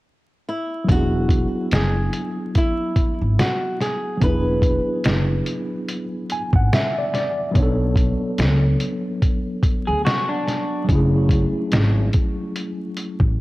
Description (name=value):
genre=lo-fi hip hop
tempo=72 BPM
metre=4/4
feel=swing 58% on 16ths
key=unclear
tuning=A4 = 440 Hz
part: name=flamenco guitar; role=melody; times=0.5-5.4 s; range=E4 to B4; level=-26 LUFS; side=right 1 dB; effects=cassette tape, tape echo
part: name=tine electric piano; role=accompaniment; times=0.8-13.4 s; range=F#3 to G#5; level=-24 LUFS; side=equal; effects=overdrive, fast stereo tremolo, cassette tape
part: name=upright bass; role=bass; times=0.9-13.3 s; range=E1 to D2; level=-20 LUFS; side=equal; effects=none
part: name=lo-fi sampler-style drum kit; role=drums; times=0.9-13.4 s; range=hi-hat, kick drum, snare drum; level=-20 LUFS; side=equal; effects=cassette tape
part: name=electric guitar through a small old amp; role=second line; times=9.9-10.9 s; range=D4 to G#4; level=-25 LUFS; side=equal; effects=cassette tape, tape echo
room=light reverb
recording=home recording on cassette, vinyl crackle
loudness=-18 LUFS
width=side -19 dB against mid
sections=0.9-13.4 A section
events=tine electric piano fill 5.9-7.6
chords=0.0 N.C.; 0.9 E7; 7.6 Bm7; 10.9 F#m7